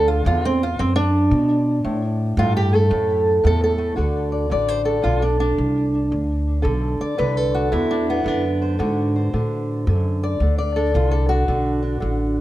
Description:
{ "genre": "acoustic country blues, solo or duo", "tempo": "112 BPM", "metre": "4/4", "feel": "swing 66% on 8ths", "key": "D mixolydian", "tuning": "A4 = 440 Hz", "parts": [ { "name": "fingerpicked old ladder-braced acoustic guitar", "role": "melody", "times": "0.0-12.4 s", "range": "A2 to D5", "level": "-20 LUFS", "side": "right 1 dB", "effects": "tape echo" }, { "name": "upright bass", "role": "bass", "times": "0.0-12.4 s", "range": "A1 to B2", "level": "-21 LUFS", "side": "equal", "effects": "none" } ], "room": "light reverb", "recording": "dark, warm production", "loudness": "-18 LUFS", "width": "side -14 dB against mid", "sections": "0.0-4.0 A section; 4.0-12.4 B section", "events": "steel-string acoustic guitar solo 0.0-4.0", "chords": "0.0 D; 1.8 A5; 4.0 D7" }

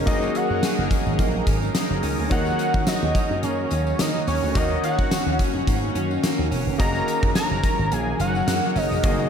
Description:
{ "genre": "1980s-style pop", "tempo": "107 BPM", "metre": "4/4", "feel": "swing 55% on 16ths", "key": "F# major", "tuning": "A4 = 439 Hz", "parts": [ { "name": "clear concert grand piano", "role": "accompaniment", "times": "0.0-9.3 s", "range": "D#3 to D#5", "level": "-30 LUFS", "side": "left 3 dB", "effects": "none" }, { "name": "shimmering ambient pad", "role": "sustained chords", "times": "0.0-9.3 s", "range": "D#3 to A#4", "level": "-28 LUFS", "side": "left 2 dB", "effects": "chorus, built-in reverb, phaser" }, { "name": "direct-recorded clean electric guitar", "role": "riff", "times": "0.0-9.3 s", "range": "D#3 to G#4", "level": "-30 LUFS", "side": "right 7 dB", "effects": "lush chorus, analog delay" }, { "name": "slap bass with an envelope filter", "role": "bass", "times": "0.0-9.2 s", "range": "E1 to D#3", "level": "-26 LUFS", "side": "equal", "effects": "none" }, { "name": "fat analog lead", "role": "melody", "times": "0.1-9.3 s", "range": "C#5 to A#5", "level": "-26 LUFS", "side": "equal", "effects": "chorus, analog delay" }, { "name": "gated 80s drum kit", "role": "drums", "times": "0.1-9.2 s", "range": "hi-hat, kick drum, snare drum, tambourine", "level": "-24 LUFS", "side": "equal", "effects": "none" }, { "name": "tambourine", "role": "percussion", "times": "0.1-9.3 s", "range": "none", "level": "-42 LUFS", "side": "left 6 dB", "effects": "none" } ], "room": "moderate lush hall reverb, RT60 2.4 s", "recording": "dreamy mix soaked in reverb", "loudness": "-20 LUFS", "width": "side -7 dB against mid", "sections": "0.0-9.3 A section", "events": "none", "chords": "0.0 F#69; 2.3 D#m7; 6.8 F#69" }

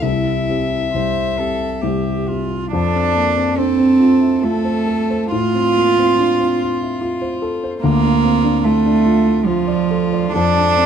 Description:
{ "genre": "classical, slow romantic movement for piano trio", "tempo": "64-74 BPM", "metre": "3/4", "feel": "rubato", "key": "F major", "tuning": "A4 = 441 Hz", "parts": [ { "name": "warm violin", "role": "melody", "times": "0.0-10.9 s", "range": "F4 to E5", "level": "-26 LUFS", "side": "left 5 dB", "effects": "none" }, { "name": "clear cello", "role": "second line", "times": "0.0-10.9 s", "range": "F3 to C5", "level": "-16 LUFS", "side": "right 4 dB", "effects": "none" }, { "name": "dark baby grand piano", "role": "accompaniment", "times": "0.0-10.9 s", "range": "C2 to D5", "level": "-19 LUFS", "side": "left 3 dB", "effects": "none" } ], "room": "moderate studio reverb, RT60 0.7 s", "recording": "dark, warm production", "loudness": "-14 LUFS", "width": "side -8 dB against mid", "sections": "0.0-2.7 A section; 2.7-10.9 B section", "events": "none", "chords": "0.0 C; 2.7 F; 5.3 F/A; 7.8 Dm; 10.3 Dm/F" }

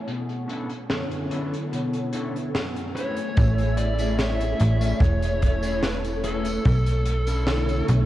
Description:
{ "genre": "vaporwave", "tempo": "73 BPM", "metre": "4/4", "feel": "straight", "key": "A major", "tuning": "A4 = 440 Hz", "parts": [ { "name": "mellow synth brass", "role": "accompaniment", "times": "0.0-8.1 s", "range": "D3 to G#5", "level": "-30 LUFS", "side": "left 1 dB", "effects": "ensemble chorus, tape echo" }, { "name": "electric guitar at the edge of break-up", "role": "riff", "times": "0.1-7.9 s", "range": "F#2 to B4", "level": "-34 LUFS", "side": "left 2 dB", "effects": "analog chorus, low-pass filter, tape echo" }, { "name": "crisp fusion drum kit", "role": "drums", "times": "0.1-8.1 s", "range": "hi-hat, snare drum, tambourine", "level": "-32 LUFS", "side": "equal", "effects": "none" }, { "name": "fuzz lead guitar", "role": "melody", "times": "3.0-7.8 s", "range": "A4 to E5", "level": "-29 LUFS", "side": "equal", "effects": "distortion, tape echo" }, { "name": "slap-like FM bass", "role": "bass", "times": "3.4-8.1 s", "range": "E1 to B1", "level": "-23 LUFS", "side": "equal", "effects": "none" }, { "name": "kick drum", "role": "drums", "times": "3.4-6.8 s", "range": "none", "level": "-22 LUFS", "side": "equal", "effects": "none" } ], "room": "wet cathedral reverb, RT60 6.3 s", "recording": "dreamy mix soaked in reverb, cassette tape, low-pass filter", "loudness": "-22 LUFS", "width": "side -14 dB against mid", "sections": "0.0-3.4 A section; 3.4-8.1 B section", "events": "none", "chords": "0.1 Bm11; 3.4 Amaj7; 6.7 Bm11" }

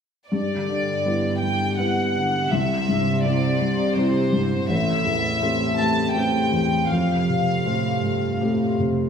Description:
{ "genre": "cinematic", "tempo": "82 BPM", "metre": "3/4", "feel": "rubato", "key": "unclear", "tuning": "A4 = 444 Hz", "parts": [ { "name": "warm studio violin section", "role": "melody", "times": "0.3-8.8 s", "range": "C5 to A5", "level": "-25 LUFS", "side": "left 1 dB", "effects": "none" }, { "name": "felt-muted upright piano", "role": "accompaniment", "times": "0.3-9.1 s", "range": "A1 to G4", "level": "-23 LUFS", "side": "equal", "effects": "none" }, { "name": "concert harp", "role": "arpeggios", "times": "0.3-9.1 s", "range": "F2 to C5", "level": "-28 LUFS", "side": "left 4 dB", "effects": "none" }, { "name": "warm studio cello section", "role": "bass", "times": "0.3-9.1 s", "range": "F2 to C3", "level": "-28 LUFS", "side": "right 4 dB", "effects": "none" } ], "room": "wet scoring stage reverb, RT60 1.6 s", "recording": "minimal, uncompressed stereo recording", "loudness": "-19 LUFS", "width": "side -7 dB against mid", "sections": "0.3-9.1 A section", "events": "none", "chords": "0.3 G6; 2.5 C; 4.7 Am7; 6.9 Fadd9" }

